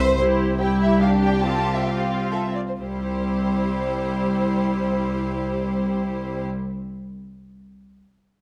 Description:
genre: quick classical-period movement for string orchestra.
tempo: 121-149 BPM.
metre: 3/4.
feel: rubato.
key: C major.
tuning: A4 = 440 Hz.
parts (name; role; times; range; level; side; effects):
clear studio violin section; second line; 0.0-6.5 s; E4 to C5; -30 LUFS; equal; none.
warm studio violin section; melody; 0.2-6.5 s; C5 to A5; -32 LUFS; equal; none.
clear studio viola section; accompaniment; 0.2-6.5 s; G3 to G4; -30 LUFS; equal; none.
warm studio cello section; bass; 0.2-6.4 s; C2; -26 LUFS; equal; none.
room: moderate recital hall reverb, RT60 1.4 s.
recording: close, detailed microphones.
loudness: -23 LUFS.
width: mono.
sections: 0.2-2.8 A section; 2.8-5.7 B section.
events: slowing down 0.0-2.8.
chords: 0.2 C; 1.4 F5/C; 2.8 C.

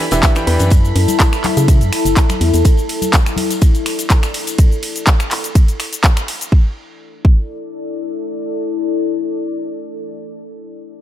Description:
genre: piano house.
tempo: 124 BPM.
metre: 4/4.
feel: swing 53% on 16ths.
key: E dorian.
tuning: A4 = 440 Hz.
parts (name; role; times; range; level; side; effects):
warm studio violin section; sustained chords; 0.0-2.7 s; B5; -30 LUFS; right 2 dB; sidechain pumping.
deep dark ambient pad; texture; 0.0-10.2 s; E4 to D5; -21 LUFS; left 3 dB; chorus, built-in reverb, sidechain pumping.
thumb-piano-like synth pluck; melody; 0.1-0.6 s; B4 to E5; -25 LUFS; right 1 dB; chorus, phaser, digital delay.
clear baby grand piano; riff; 0.1-0.7 s; E3 to G5; -20 LUFS; right 1 dB; sidechain pumping, digital delay.
organ-like FM bass; bass; 0.1-2.6 s; E1 to C#3; -15 LUFS; equal; sidechain pumping.
garage drum kit; drums; 0.1-6.5 s; cabasa, finger snaps, handclaps, hi-hat, ride cymbal; -20 LUFS; equal; none.
soft brush drum kit; drums; 0.1-0.6 s; hi-hat, snare drum; -30 LUFS; left 1 dB; none.
tambourine and congas; percussion; 0.1-4.6 s; none; -26 LUFS; left 5 dB; none.
electronic kick drum; drums; 0.2-7.4 s; none; -11 LUFS; equal; none.
room: moderate lush hall reverb, RT60 2.0 s, small room ambience.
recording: none.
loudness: -13 LUFS.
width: side -12 dB against mid.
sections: 0.0-6.5 A section; 6.5-10.4 B section.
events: drop 0.0-6.5.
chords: 0.0 Em7; 0.7 F#m7; 2.4 E5; 4.6 N.C.; 6.5 E7sus4.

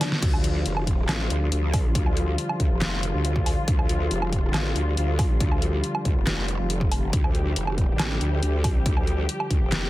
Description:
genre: heavy wobble dubstep.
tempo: 139 BPM.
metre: 4/4.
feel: half-time.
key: D minor.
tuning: A4 = 440 Hz.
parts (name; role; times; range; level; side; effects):
dark studio string section; sustained chords; 0.0-9.9 s; D3 to G4; -30 LUFS; left 1 dB; sidechain pumping, low-pass filter.
dubstep drum kit; drums; 0.0-9.8 s; crash cymbal, handclaps, hi-hat, snare drum, woodblock; -29 LUFS; equal; none.
growl bass; bass; 0.2-9.9 s; F1 to D2; -25 LUFS; equal; chorus, overdrive.
electronic kick drum; drums; 0.2-9.6 s; none; -23 LUFS; equal; none.
room: little or no reverb.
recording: dense, heavily limited modern master.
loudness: -21 LUFS.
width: side -17 dB against mid.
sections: 0.0-9.9 A section.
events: break 0.0; drum fill 0.0.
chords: 0.0 Dm.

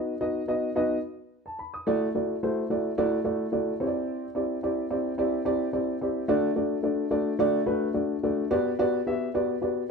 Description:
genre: soul.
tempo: 108 BPM.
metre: 4/4.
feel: straight.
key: G major.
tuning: A4 = 440 Hz.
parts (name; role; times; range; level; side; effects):
dark upright piano; solo; 0.0-9.8 s; A3 to D#6; -25 LUFS; equal; none.
room: moderate large studio reverb, RT60 1.0 s.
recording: band playing live in one room.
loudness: -25 LUFS.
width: side -5 dB against mid.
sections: 0.0-8.5 A section; 8.5-9.9 B section.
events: none.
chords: 0.0 B; 1.9 Dadd9; 3.8 Cadd9; 6.3 D; 8.5 Gmaj7.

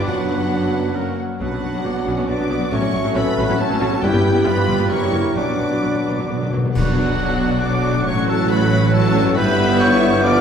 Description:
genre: classical, dramatic, fast romantic movement for symphony orchestra.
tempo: 136 BPM.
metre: 3/4.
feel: rubato.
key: B minor.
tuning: A4 = 439 Hz.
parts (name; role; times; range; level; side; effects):
clear symphonic violin section; melody; 0.0-10.4 s; F#5 to D6; -28 LUFS; left 4 dB; none.
clear clarinet; second line; 0.0-10.4 s; B3 to E5; -27 LUFS; left 1 dB; none.
large flute ensemble; second line; 0.0-10.4 s; F#4 to G6; -26 LUFS; right 1 dB; none.
warm oboe; second line; 0.0-10.4 s; F#4 to D5; -27 LUFS; right 1 dB; none.
warm symphonic violin section; second line; 0.0-10.4 s; C#4 to B4; -29 LUFS; left 2 dB; none.
dark bassoon; accompaniment; 0.0-10.4 s; F#3 to B3; -26 LUFS; right 2 dB; none.
warm studio viola section; accompaniment; 0.0-10.4 s; F3 to C#4; -24 LUFS; right 1 dB; none.
warm French horn section; sustained chords; 0.0-10.4 s; F#3 to F4; -26 LUFS; left 2 dB; none.
concert harp; arpeggios; 0.0-10.4 s; F#2 to E5; -28 LUFS; left 5 dB; none.
rich symphonic cello section; bass; 0.0-10.4 s; F#2 to B2; -26 LUFS; equal; none.
warm symphonic double bass section; bass; 0.0-10.4 s; F#1 to B1; -25 LUFS; right 2 dB; none.
timpani; percussion; 0.1-0.7, 5.4-6.7 s; F#2 to B2; -26 LUFS; left 2 dB; none.
clear tuba; bass; 6.8-10.4 s; G1 to B1; -25 LUFS; right 2 dB; none.
clash cymbals and concert bass drum; percussion; 6.8-7.6 s; none; -27 LUFS; left 1 dB; none.
room: wet scoring stage reverb, RT60 1.6 s.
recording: heard from further back in the room.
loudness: -16 LUFS.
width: side -7 dB against mid.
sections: 0.0-6.8 A section; 6.8-10.4 B section.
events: timpani fill 5.4-6.8; band accent 6.8-7.2.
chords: 0.1 Bm/F#; 1.0 F#; 1.4 Bm; 2.7 F#m/A; 4.0 Em/G; 4.5 G7; 4.9 F#7b9; 5.4 Bm; 8.1 F#m/A; 9.4 Em/G.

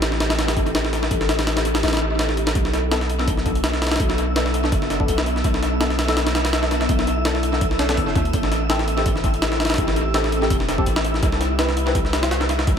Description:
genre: drum and bass, jungle.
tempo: 166 BPM.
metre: 4/4.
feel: swing 54% on 16ths.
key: B phrygian.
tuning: A4 = 440 Hz.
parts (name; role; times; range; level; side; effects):
ethereal airy pad; sustained chords; 0.0-12.8 s; B3 to B4; -27 LUFS; left 1 dB; ensemble chorus, built-in reverb, phaser, vintage 12-bit sampler grit.
long sustained 808-style bass; bass; 0.0-12.8 s; E1 to D2; -24 LUFS; equal; tube saturation.
jungle sampler-style drum kit; drums; 0.0-12.8 s; hi-hat, kick drum, snare drum; -21 LUFS; equal; overdrive, analog delay.
wind-like tuned noise texture; texture; 3.4-12.8 s; E5 to E6; -30 LUFS; right 1 dB; built-in reverb.
deep mellow chord stab; stabs; 2.9-11.9 s; B3 to B4; -28 LUFS; left 2 dB; chorus, phaser, dub echo.
room: light reverb, digital ambience.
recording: echo-heavy mix.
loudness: -18 LUFS.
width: side -7 dB against mid.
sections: 0.0-12.8 A section.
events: none.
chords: 0.0 Am7; 2.6 Bm7; 8.3 Am7; 11.2 Cmaj7.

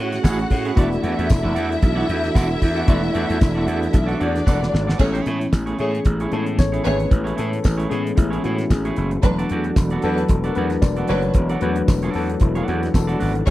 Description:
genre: disco.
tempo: 113 BPM.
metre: 4/4.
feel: swing 56% on 16ths.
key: A major.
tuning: A4 = 440 Hz.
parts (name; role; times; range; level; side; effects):
clear studio string section; second line; 0.0-13.5 s; F#3 to F#5; -25 LUFS; equal; none.
tine electric piano; accompaniment; 0.0-13.5 s; F#3 to E5; -26 LUFS; left 5 dB; none.
mellow tonewheel organ; sustained chords; 0.0-13.5 s; E3 to A4; -27 LUFS; right 2 dB; chorus vibrato, slow rotary speaker.
gritty slap bass; bass; 0.0-13.5 s; E1 to A2; -23 LUFS; equal; overdrive.
twangy electric guitar; accompaniment; 0.1-13.5 s; A3 to E5; -29 LUFS; right 4 dB; spring reverb.
damped 70s drum kit; drums; 0.1-13.5 s; crash cymbal, hi-hat, kick drum, snare drum; -16 LUFS; equal; none.
tambourine; percussion; 0.2-13.1 s; none; -40 LUFS; left 13 dB; none.
room: small room ambience.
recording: dry, close 1970s-style studio recording.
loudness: -17 LUFS.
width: side -16 dB against mid.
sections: 0.0-5.0 A section; 5.0-13.5 B section.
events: drum fill 4.5-5.0; tine electric piano solo 5.0-13.5.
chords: 0.0 Amaj7; 0.8 E9sus4; 5.0 Amaj7; 9.2 E9sus4.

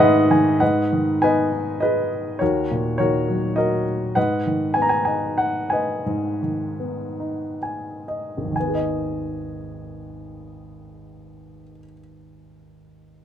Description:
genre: classical, lyrical solo piano.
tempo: 60-104 BPM.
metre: 3/4.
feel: rubato.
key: G# minor.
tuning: A4 = 440 Hz.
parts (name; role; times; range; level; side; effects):
warm baby grand piano; solo; 0.0-13.2 s; G#1 to A#5; -19 LUFS; equal; none.
room: light reverb.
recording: none.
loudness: -19 LUFS.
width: side -9 dB against mid.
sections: 0.6-8.6 A section; 8.6-13.2 B section.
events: grand piano fill 0.0-0.6, 7.2-8.6; slowing down 4.2-8.6.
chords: 0.0 G#m; 2.4 D#m7; 4.2 G#m.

